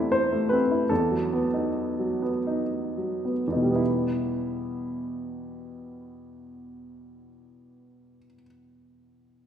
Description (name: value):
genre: classical, romantic character piece for solo piano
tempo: 52-82 BPM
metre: 3/4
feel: rubato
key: E minor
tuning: A4 = 440 Hz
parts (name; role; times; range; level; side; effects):
- warm upright piano; solo; 0.0-9.5 s; E2 to E5; -25 LUFS; equal; none
room: wet recital hall reverb, RT60 1.8 s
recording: recorded in a church or concert hall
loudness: -24 LUFS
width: side -9 dB against mid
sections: 0.0-3.8 A section; 3.8-9.5 B section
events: slowing down 0.0-3.8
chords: 0.0 Am/E; 0.9 B7/E; 3.8 Em